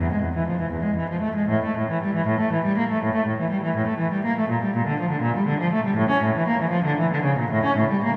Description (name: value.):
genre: classical, baroque-style suite movement for unaccompanied cello.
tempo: 80 BPM (dotted quarters).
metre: 12/8.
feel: rubato.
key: unclear.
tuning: A4 = 442 Hz.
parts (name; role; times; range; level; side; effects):
warm cello; solo; 0.0-8.2 s; E2 to C#4; -23 LUFS; equal; none.
room: wet cathedral reverb, RT60 5.0 s.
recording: heard from further back in the room.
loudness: -23 LUFS.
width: mono.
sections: 0.0-8.2 A section.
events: none.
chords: none.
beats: 0.73 | 1.51 2.28 3.02 3.75 | 4.49 5.24 5.98 6.73 | 7.52.